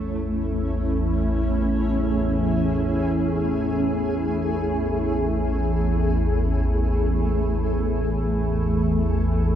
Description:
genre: dark ambient drone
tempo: free time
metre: none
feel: none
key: A major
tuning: A4 = 440 Hz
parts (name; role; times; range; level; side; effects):
- granular cloud pad; sustained chords; 0.0-9.6 s; A3 to G#4; -24 LUFS; equal; built-in reverb
- dark detuned synth bell; arpeggios; 0.0-7.2 s; none; barely audible; none; none
- organ-like drone; drone; 0.0-9.6 s; A1 to E2; -23 LUFS; equal; ensemble chorus, built-in reverb
- bronze singing bowl; texture; 0.0-9.6 s; none; barely audible; none; none
room: wet cathedral reverb, RT60 6.2 s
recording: in a vast, echoing space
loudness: -20 LUFS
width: side -10 dB against mid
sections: 0.0-9.6 A section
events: none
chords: 0.0 A; 7.1 D5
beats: free time

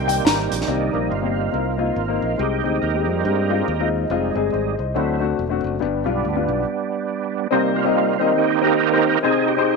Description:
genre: uptempo gospel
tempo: 140 BPM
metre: 4/4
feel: swing 59% on 8ths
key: C minor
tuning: A4 = 440 Hz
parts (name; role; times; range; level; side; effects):
- warm upright piano; accompaniment; 0.0-9.8 s; G2 to Bb5; -22 LUFS; left 12 dB; none
- overdriven tonewheel organ; sustained chords; 0.0-9.8 s; Eb3 to Bb4; -22 LUFS; right 12 dB; slow rotary speaker, chorus vibrato
- warm French horn section; sustained chords; 0.0-6.7 s; D4 to Eb5; -32 LUFS; right 11 dB; none
- modern bright fingered electric bass; bass; 0.0-6.6 s; E1 to G2; -25 LUFS; right 1 dB; none
- crisp fusion drum kit; drums; 0.1-0.7 s; hi-hat, snare drum; -22 LUFS; right 2 dB; none
room: moderate spring reverb, RT60 2.2 s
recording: 1960s-style stereo with parts hard left and right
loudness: -18 LUFS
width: side -3 dB against mid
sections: 0.7-7.5 A section; 7.5-9.8 B section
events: tonewheel organ solo 0.7-7.5, 7.5-9.8; stop 6.7-7.5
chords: 0.0 Cm7; 2.4 Abmaj7/C; 4.1 Fm7; 5.0 D7; 5.8 G; 7.5 Cm7; 9.2 Abmaj7/C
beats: 0.26 | 0.69 1.11 1.54 1.97 | 2.40 2.82 3.25 3.68 | 4.11 4.53 4.96 5.39 | 5.82 6.24 6.67 7.10 | 7.52 7.95 8.37 8.80 | 9.22 9.65

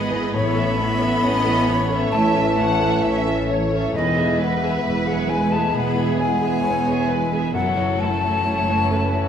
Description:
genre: cinematic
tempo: 66 BPM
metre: 4/4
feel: rubato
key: E major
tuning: A4 = 441 Hz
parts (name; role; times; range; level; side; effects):
- muted studio violin section; melody; 0.0-9.3 s; G#4 to F#5; -30 LUFS; left 3 dB; none
- muted studio violin section; second line; 0.0-9.3 s; E4 to E5; -29 LUFS; left 1 dB; none
- silver concert flute; second line; 0.0-9.3 s; D#5 to B5; -24 LUFS; left 2 dB; none
- felt-muted upright piano; accompaniment; 0.0-9.3 s; E2 to C#5; -27 LUFS; right 1 dB; none
- muted studio viola section; accompaniment; 0.0-9.3 s; E3 to G#4; -29 LUFS; right 2 dB; none
- mellow French horn section; sustained chords; 0.0-9.3 s; E3 to C#4; -27 LUFS; left 1 dB; none
- concert harp; arpeggios; 0.0-9.3 s; E2 to C#5; -28 LUFS; left 6 dB; none
- muted studio cello section; bass; 0.0-9.3 s; D#3 to B3; -27 LUFS; right 1 dB; none
- muted studio double bass section; bass; 0.0-9.3 s; E1 to A1; -27 LUFS; right 3 dB; none
room: wet recital hall reverb, RT60 1.4 s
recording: recorded in a church or concert hall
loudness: -18 LUFS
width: side -8 dB against mid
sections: 0.0-9.3 A section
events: none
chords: 0.3 A; 3.9 E; 7.5 F#m7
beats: | 0.34 1.23 2.12 3.02 | 3.93 4.83 5.73 6.63 | 7.54 8.45

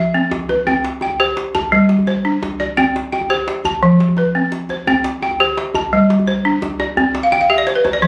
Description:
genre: west african traditional, West African string and xylophone music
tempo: 114 BPM (dotted quarters)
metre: 12/8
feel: straight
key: C major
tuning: A4 = 440 Hz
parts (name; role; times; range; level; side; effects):
- balafon; arpeggios; 0.0-8.1 s; F3 to A5; -16 LUFS; equal; none
- djembe; percussion; 0.1-8.0 s; none; -28 LUFS; equal; none
room: moderate studio reverb, RT60 0.6 s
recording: recorded on a phone in the room, club reverb, compression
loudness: -16 LUFS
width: mono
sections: 0.7-8.1 A section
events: balafon fill 7.2-8.1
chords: 0.0 N.C.; 0.7 C5; 1.7 G5; 2.8 C5; 3.8 F; 4.9 C5; 5.9 G5; 7.0 C5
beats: 0.14 | 0.66 1.19 1.72 2.24 | 2.77 3.29 3.82 4.34 | 4.87 5.40 5.92 6.45 | 6.97 7.50 8.03

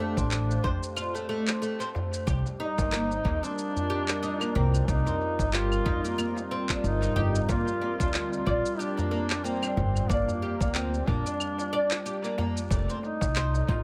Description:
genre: organic downtempo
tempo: 92 BPM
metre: 4/4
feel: swing 56% on 16ths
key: C dorian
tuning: A4 = 440 Hz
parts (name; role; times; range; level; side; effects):
- warm duduk; melody; 0.0-13.8 s; Bb3 to F4; -34 LUFS; equal; analog delay
- warm analog pad; sustained chords; 0.0-13.8 s; G3 to F5; -38 LUFS; equal; chorus, sidechain pumping
- oud; arpeggios; 0.0-13.8 s; A3 to D5; -35 LUFS; equal; dub echo
- bronze singing bowl; texture; 0.0-13.8 s; F4 to A5; -48 LUFS; equal; none
- upright bass; bass; 0.2-13.8 s; F1 to F2; -31 LUFS; equal; sidechain pumping
- electronic kick drum; drums; 0.2-13.8 s; none; -32 LUFS; equal; none
- electronic shaker, handclaps and claves; drums; 0.2-13.7 s; none; -36 LUFS; equal; analog delay
- darbuka; percussion; 0.2-13.8 s; none; -38 LUFS; equal; analog delay
room: moderate spring reverb, RT60 2.5 s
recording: echo-heavy mix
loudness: -28 LUFS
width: mono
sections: 0.0-13.8 A section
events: none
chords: 0.0 Dm7; 2.3 Cm11; 7.5 Gm7; 12.7 F7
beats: 0.32 0.97 1.62 | 2.27 2.92 3.58 4.23 | 4.88 5.53 6.18 6.84 | 7.49 8.14 8.79 9.45 | 10.10 10.75 11.40 12.05 | 12.71 13.36

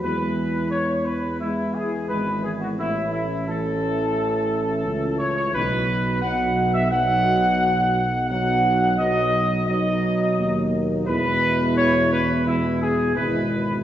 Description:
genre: classical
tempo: 87 BPM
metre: 4/4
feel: straight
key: unclear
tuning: A4 = 440 Hz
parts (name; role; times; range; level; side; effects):
- dark trumpet section; melody; 0.0-13.8 s; E4 to F#5; -22 LUFS; equal; none
- dark trombone section; sustained chords; 0.0-13.8 s; B2 to A3; -27 LUFS; right 2 dB; none
- mellow French horn section; sustained chords; 0.0-13.8 s; G#3 to E4; -29 LUFS; left 3 dB; none
- mellow tuba; bass; 0.0-13.8 s; G#1 to E2; -26 LUFS; right 1 dB; none
room: wet recital hall reverb, RT60 1.7 s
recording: recorded in a church or concert hall, nothing above 7.7 kHz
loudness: -19 LUFS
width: side -11 dB against mid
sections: 0.0-13.8 A section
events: none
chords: 0.0 E; 2.8 A; 5.5 B; 11.1 E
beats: | 0.03 0.72 1.40 2.09 | 2.77 3.48 4.17 4.85 | 5.54 6.23 6.91 7.60 | 8.29 8.98 9.67 10.37 | 11.07 11.76 12.46 13.15

